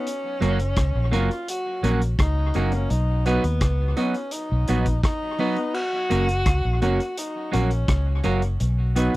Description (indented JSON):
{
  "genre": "roots reggae",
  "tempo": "84 BPM",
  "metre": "4/4",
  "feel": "straight",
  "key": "F# major",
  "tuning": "A4 = 439 Hz",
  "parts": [
    { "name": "warm tenor saxophone", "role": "melody", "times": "0.0-8.3 s", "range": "B3 to F#4", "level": "-29 LUFS", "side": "equal", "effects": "tape echo" },
    { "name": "warm baby grand piano", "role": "stabs", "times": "0.0-9.1 s", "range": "A#3 to B4", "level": "-28 LUFS", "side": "left 4 dB", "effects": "none" },
    { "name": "vintage drum kit", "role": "drums", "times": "0.1-9.2 s", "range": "crash cymbal, hi-hat, kick drum, rim click", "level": "-26 LUFS", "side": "equal", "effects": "none" },
    { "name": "semi-hollow electric guitar", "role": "accompaniment", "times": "0.4-9.1 s", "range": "F#3 to F#4", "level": "-28 LUFS", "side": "right 4 dB", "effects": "tape echo" },
    { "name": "vintage muted fingered electric bass", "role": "bass", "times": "0.4-9.1 s", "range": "F#1 to D#2", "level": "-22 LUFS", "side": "equal", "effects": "none" }
  ],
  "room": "little or no reverb",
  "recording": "dry, close 1970s-style studio recording",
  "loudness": "-20 LUFS",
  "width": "side -18 dB against mid",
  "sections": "0.0-5.7 A section; 5.7-9.2 B section",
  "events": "none",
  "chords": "0.1 F#; 2.9 B; 5.7 F#; 8.6 B",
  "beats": "| 0.05 0.77 1.48 2.19 | 2.90 3.61 4.33 5.04 | 5.75 6.46 7.17 7.89 | 8.60"
}